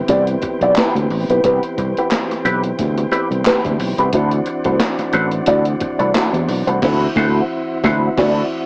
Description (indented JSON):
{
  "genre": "funk",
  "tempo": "89 BPM",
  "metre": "4/4",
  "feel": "swing 56% on 16ths",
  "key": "unclear",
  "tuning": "A4 = 440 Hz",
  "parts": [
    { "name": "tonewheel organ", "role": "sustained chords", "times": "0.0-8.7 s", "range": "E3 to G4", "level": "-25 LUFS", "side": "equal", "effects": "slow rotary speaker, plate reverb" },
    { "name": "mellow electric guitar", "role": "accompaniment", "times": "0.1-8.4 s", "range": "A3 to D5", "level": "-20 LUFS", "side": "equal", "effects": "wah, plate reverb" },
    { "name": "fingered electric bass", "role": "bass", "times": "0.1-8.4 s", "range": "A1 to E2", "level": "-22 LUFS", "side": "equal", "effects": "none" },
    { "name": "breakbeat sampler-style drum kit", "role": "drums", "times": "0.1-8.4 s", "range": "crash cymbal, hi-hat, kick drum, snare drum", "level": "-26 LUFS", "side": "equal", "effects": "cassette tape" },
    { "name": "congas", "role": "percussion", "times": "0.1-6.5 s", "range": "none", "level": "-31 LUFS", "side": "equal", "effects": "none" },
    { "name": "group handclap", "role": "percussion", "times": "0.8-6.3 s", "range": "none", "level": "-26 LUFS", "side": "equal", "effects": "none" }
  ],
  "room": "light reverb",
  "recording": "home recording on cassette, small speaker sound",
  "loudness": "-17 LUFS",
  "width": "mono",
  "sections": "0.0-8.7 A section",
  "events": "band accent 6.8-8.7",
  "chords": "0.0 Cmaj7; 4.1 D9"
}